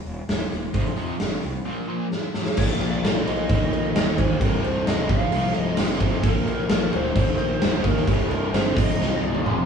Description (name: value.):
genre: hard rock.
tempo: 131 BPM.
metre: 4/4.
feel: straight.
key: unclear.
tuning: A4 = 440 Hz.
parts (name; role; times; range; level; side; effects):
fuzz fingered electric bass; bass; 0.1-9.6 s; C1 to F2; -29 LUFS; equal; overdrive.
huge arena drum kit; drums; 0.1-9.6 s; crash cymbal, hi-hat, kick drum, snare drum, toms; -23 LUFS; equal; vintage 12-bit sampler grit.
overdriven semi-hollow guitar; riff; 0.7-9.7 s; C2 to Bb3; -26 LUFS; equal; harmonic tremolo.
lead guitar through a small cranked amp; melody; 2.6-9.4 s; G4 to F5; -29 LUFS; left 2 dB; overdrive.
room: moderate small room reverb, RT60 0.5 s.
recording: band playing live in one room, cassette tape, studio ambience.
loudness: -20 LUFS.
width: side -6 dB against mid.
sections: 0.0-2.6 A section; 2.6-9.7 B section.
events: drum fill 2.1-2.6, 9.0-9.7.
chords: 0.0 Eb5; 0.7 F5; 1.7 Bb5; 3.5 Eb5; 4.4 Cm; 5.1 F5; 6.2 Bb; 7.1 Eb5; 8.1 C5; 8.8 F5.